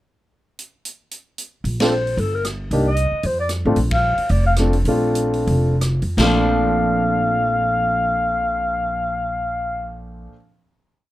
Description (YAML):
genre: jazz, small-group swing and bop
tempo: 159-227 BPM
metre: 4/4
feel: swing 58% on 8ths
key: Bb major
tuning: A4 = 439 Hz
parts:
  - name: vintage drum kit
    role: drums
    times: 0.6-6.3 s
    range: china cymbal, hi-hat, kick drum, ride cymbal, rim click, snare drum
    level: -26 LUFS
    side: equal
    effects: none
  - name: upright bass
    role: bass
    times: 1.6-10.3 s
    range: F1 to F2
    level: -22 LUFS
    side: equal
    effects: none
  - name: breathy clarinet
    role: melody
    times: 1.8-10.0 s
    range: A4 to F5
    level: -20 LUFS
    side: left 1 dB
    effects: none
  - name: warm concert grand piano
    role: accompaniment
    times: 1.8-10.4 s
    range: Bb2 to A4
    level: -21 LUFS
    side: equal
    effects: none
room: little or no reverb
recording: close, detailed microphones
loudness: -17 LUFS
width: side -15 dB against mid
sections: 0.6-1.6 pickup bar; 1.6-6.2 A section; 6.2-9.2 final chord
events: band accent 1.8, 3.9; slowing down 3.8-6.2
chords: 0.6 N.C.; 1.6 Bbmaj9; 2.2 Gsus2; 2.7 Cm9; 3.2 F; 3.8 Bbmaj9